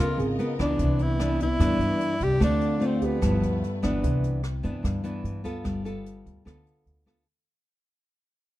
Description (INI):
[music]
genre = bossa nova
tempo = 148 BPM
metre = 4/4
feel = straight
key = C major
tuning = A4 = 441 Hz
[part]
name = breathy tenor saxophone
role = melody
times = 0.0-3.8 s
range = B3 to G4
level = -28 LUFS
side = left 1 dB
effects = none
[part]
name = nylon-string guitar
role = accompaniment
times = 0.0-7.2 s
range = G2 to Bb4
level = -27 LUFS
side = equal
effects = none
[part]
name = warm studio string section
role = sustained chords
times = 0.0-4.0 s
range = A3 to Eb5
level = -36 LUFS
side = right 1 dB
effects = none
[part]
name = upright bass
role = bass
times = 0.0-7.2 s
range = G1 to G2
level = -28 LUFS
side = equal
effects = none
[part]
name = dark baby grand piano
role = accompaniment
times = 0.2-5.7 s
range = G4 to B4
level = -36 LUFS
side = right 5 dB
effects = none
[part]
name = jazz brush drum kit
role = drums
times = 0.2-7.2 s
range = hi-hat, kick drum, rim click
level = -32 LUFS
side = equal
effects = none
[sound]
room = light reverb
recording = dark, warm production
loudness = -23 LUFS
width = side -15 dB against mid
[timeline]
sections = 0.0-4.0 A section; 4.0-7.3 B section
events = fade-out 4.0-7.3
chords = 0.0 Db13; 0.8 Cmaj9; 2.4 Dm7; 3.2 G13; 4.0 Cmaj9; 5.7 G9